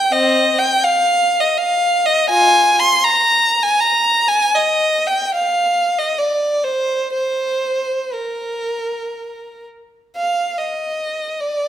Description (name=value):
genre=classical, free, expressive piece for unaccompanied violin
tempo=48-83 BPM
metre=3/4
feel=rubato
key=Eb major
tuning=A4 = 440 Hz
part: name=rich violin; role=solo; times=0.0-11.7 s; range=C4 to C6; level=-14 LUFS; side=equal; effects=none
room=moderate recital hall reverb, RT60 1.4 s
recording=minimal, uncompressed stereo recording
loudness=-14 LUFS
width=side -10 dB against mid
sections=0.0-10.2 A section; 10.2-11.7 B section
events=none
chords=none